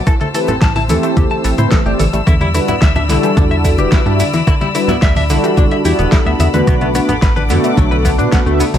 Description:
nu-disco, nu disco; 109 BPM; 4/4; straight; E minor; A4 = 440 Hz
warm chamber string section; sustained chords; 0.0-8.8 s; A4 to E6; -23 LUFS; left 4 dB; sidechain pumping
analog pluck; arpeggios; 0.0-8.8 s; D3 to G4; -21 LUFS; left 2 dB; chorus, sidechain pumping, digital delay
direct-recorded clean electric guitar; riff; 0.1-8.8 s; B2 to A5; -21 LUFS; left 3 dB; wide subtle chorus, ping-pong delay
electronic kick drum; drums; 0.1-8.4 s; -13 LUFS; equal; overdrive, small room ambience
pop drum kit; drums; 0.1-8.8 s; hi-hat, rim click, shaker, snare drum; -22 LUFS; equal; small room ambience
egg shaker and congas; percussion; 0.1-8.8 s; -24 LUFS; right 2 dB
mellow synth brass; accompaniment; 0.3-8.6 s; G3 to E5; -17 LUFS; equal; chorus, cassette tape, sidechain pumping, ping-pong delay
chorused synth bass; bass; 0.5-8.8 s; E1 to B2; -16 LUFS; equal
light reverb; -11 LUFS; side -10 dB against mid
0.0-8.8 A section
0.1 Am7; 2.3 Em7; 6.7 Bm7

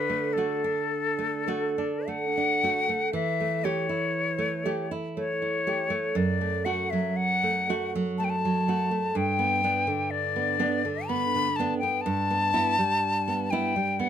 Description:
romantic duo for flute and classical guitar; 61 BPM; 3/4; uneven beats, rubato; D major; A4 = 440 Hz
bright silver concert flute; melody; 0.0-14.1 s; A4 to B5; -27 LUFS; left 4 dB
nylon-string guitar; accompaniment; 0.0-14.1 s; F#2 to G4; -28 LUFS; right 3 dB
little or no reverb; close, detailed microphones; -24 LUFS; side -9 dB against mid
0.0-14.1 A section
0.0 D; 3.1 A7/E; 6.2 F#m; 9.2 G; 12.1 Em/G

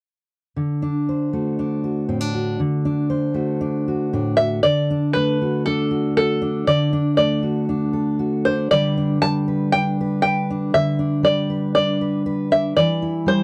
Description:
folk; 118 BPM; 4/4; straight; A4 = 440 Hz
fingerpicked steel-string acoustic guitar; accompaniment; 0.6-13.4 s; A2 to C5; -22 LUFS; equal
open-back banjo; melody; 4.4-13.4 s; A4 to A5; -22 LUFS; equal
light reverb; dry, close 1970s-style studio recording; -20 LUFS; mono
0.6-4.6 A section; 4.6-13.4 B section
0.6 D; 8.7 G/D; 12.8 Em

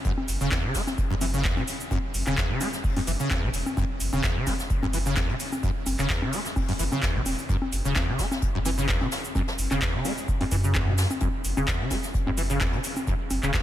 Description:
acid house; 129 BPM; 4/4; swing 54% on 16ths; F# minor; A4 = 441 Hz
acid bass, saw; riff; 0.0-13.6 s; E2 to A3; -29 LUFS; equal; tube saturation, ensemble chorus, sidechain pumping, ping-pong delay
jazz brush drum kit; drums; 0.0-13.6 s; hi-hat, snare drum; -38 LUFS; left 2 dB; sidechain pumping on hats, high-pass filter on hats, high-pass filter on snare, high-pass filter on room
warm sub bass; bass; 0.1-13.5 s; E1 to F#2; -29 LUFS; equal; sidechain pumping
booming analog drum machine; drums; 0.1-13.6 s; congas, handclaps, hi-hat, shaker; -30 LUFS; left 1 dB
electronic kick drum; drums; 0.1-13.6 s; -29 LUFS; equal
moderate church reverb, RT60 3.5 s; dreamy mix soaked in reverb; -24 LUFS; side -12 dB against mid
0.0-13.6 A section
0.0 F#7(no3)

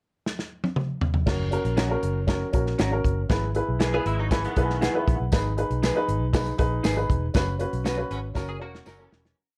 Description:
uptempo 1960s-style soul; 118 BPM; 4/4; straight; A4 = 441 Hz
natural country drum kit; drums; 0.3-9.4 s; crash cymbal, hi-hat, kick drum, snare drum, toms; -28 LUFS; equal
warm upright piano; accompaniment; 1.3-9.3 s; C#4 to B5; -30 LUFS; equal; plate reverb
vintage muted fingered electric bass; bass; 1.3-9.3 s; E1 to B1; -30 LUFS; equal; tube saturation
electric guitar through a small old amp; stabs; 1.8-9.0 s; C#4 to B4; -34 LUFS; equal; analog delay, plate reverb
direct-recorded clean electric guitar; riff; 3.9-5.2, 8.5-9.4 s; D#3 to G#4; -36 LUFS; equal; ensemble chorus
tambourine; percussion; 5.3-9.0 s; -46 LUFS; equal
warm horn section; second line; 7.9-9.2 s; F#3 to B4; -41 LUFS; equal
light reverb; cassette tape; -25 LUFS; mono
0.0-1.3 pickup bar; 1.3-9.4 pre-chorus
drum fill 0.3-1.3, 8.4-9.4; upright piano fill 3.8-5.3; fade-out 7.4-9.4; band accent 7.4-9.4
0.0 N.C.; 1.3 F#; 3.3 E/G#; 5.3 G#m; 7.4 F#sus4; 8.4 F#

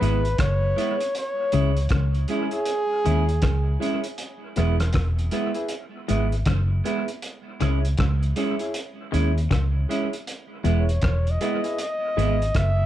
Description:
roots reggae; 79 BPM; 4/4; swing 61% on 16ths; E major; A4 = 441 Hz
warm flugelhorn; melody; 0.0-3.8, 10.8-12.9 s; G#4 to E5; -27 LUFS; equal; tape echo
semi-hollow electric guitar; accompaniment; 0.0-12.4 s; G#3 to E4; -29 LUFS; right 4 dB; tape echo
semi-hollow electric guitar; riff; 0.0-12.8 s; E2 to D#3; -31 LUFS; left 6 dB
reed electric piano; stabs; 0.0-12.4 s; E4 to E5; -31 LUFS; equal; overdrive, fast tremolo
vintage muted fingered electric bass; bass; 0.0-12.9 s; E1 to D#2; -22 LUFS; equal
cloth-damped thuddy drum kit; drums; 0.0-12.8 s; hi-hat, kick drum, rim click; -28 LUFS; equal; dub echo
light reverb; dark, warm production; -21 LUFS; side -12 dB against mid
0.0-12.9 A section
0.0 E; 1.1 C#m; 4.2 E; 7.2 C#m; 10.3 E

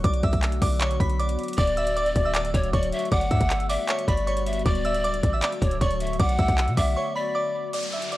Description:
hip hop, trap; 156 BPM; 4/4; half-time; A4 = 440 Hz
glassy synth bell; melody; 0.0-8.2 s; C#5 to B6; -29 LUFS; right 1 dB; chorus, low-pass filter, tape echo
glassy FM pad; sustained chords; 0.0-7.7 s; D3 to F#4; -34 LUFS; left 3 dB; ensemble chorus, built-in reverb
warm 808-style bass; bass; 0.0-7.0 s; D1 to B2; -26 LUFS; equal
trap drum kit; drums; 0.0-8.2 s; handclaps, hi-hat, kick drum; -26 LUFS; equal
breathy pan flute; second line; 1.6-7.7 s; C#5 to F#5; -27 LUFS; left 2 dB; tape echo
downlifter; sound effects; 7.7-8.2 s; -30 LUFS; equal
digital ambience; dry, gritty hardware recording, cassette tape; -21 LUFS; side -16 dB against mid
0.0-7.7 A section
break 7.0-7.7; kick muted 7.7-8.2
0.0 Bm; 1.6 D; 3.1 Gmaj7; 4.7 D; 6.2 Bm

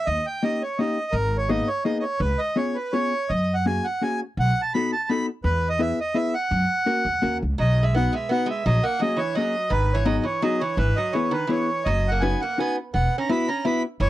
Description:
musette waltz; 168 BPM; 3/4; rubato; B major; A4 = 440 Hz
accordion; melody; 0.0-14.1 s; A#4 to B5; -24 LUFS; right 2 dB
upright bass; bass; 0.1-14.1 s; E1 to F#2; -23 LUFS; equal
hollow-body jazz guitar; accompaniment; 0.4-13.8 s; A#3 to B4; -24 LUFS; left 3 dB
lap resonator guitar; second line; 7.6-14.1 s; D#3 to E4; -29 LUFS; right 4 dB
little or no reverb; dry, close 1970s-style studio recording; -21 LUFS; side -14 dB against mid
0.0-14.1 A section
0.1 D#7; 1.1 G#madd9; 2.2 C#7; 3.3 F#add9; 4.4 B7; 5.4 E; 6.5 F#; 7.6 B; 8.7 F#add9/A#; 9.7 G#m7; 10.8 E/G#; 11.9 Badd9/F#; 12.9 Esus2

